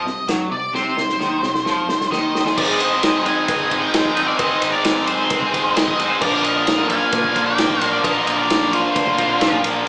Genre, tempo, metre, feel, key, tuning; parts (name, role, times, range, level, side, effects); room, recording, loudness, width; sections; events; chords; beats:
classic rock; 131 BPM; 4/4; straight; A4 = 439 Hz
octave-fuzz lead guitar; melody; 0.0-9.6 s; C5 to Ab5; -22 LUFS; equal; wah, distortion
overdriven electric guitar; riff; 0.0-9.9 s; Bb2 to Bb4; -25 LUFS; left 1 dB
raw garage guitar; riff; 0.0-9.9 s; Ab2 to Bb4; -24 LUFS; equal; overdrive
fingered electric bass; bass; 0.0-9.8 s; F1 to Bb2; -35 LUFS; equal
vintage drum kit; drums; 0.1-9.7 s; crash cymbal, hi-hat, kick drum, ride cymbal, snare drum; -22 LUFS; equal
octave-fuzz lead guitar; second line; 2.1-9.6 s; F4 to F5; -23 LUFS; equal; distortion
tight distorted guitar; riff; 2.6-9.9 s; Ab2 to Bb3; -23 LUFS; equal; distortion
cowbell; percussion; 2.6-9.5 s; -31 LUFS; equal
wet large studio reverb, RT60 0.8 s; band playing live in one room, small speaker sound; -15 LUFS; side -30 dB against mid
0.0-2.6 A section; 2.6-9.9 B section
drum fill 0.7-2.6
0.0 Cm; 2.6 Ab; 6.2 Bb
0.28 | 0.74 1.20 1.66 2.11 | 2.57 3.03 3.48 3.94 | 4.39 4.85 5.31 5.76 | 6.22 6.67 7.13 7.59 | 8.04 8.50 8.96 9.41 | 9.87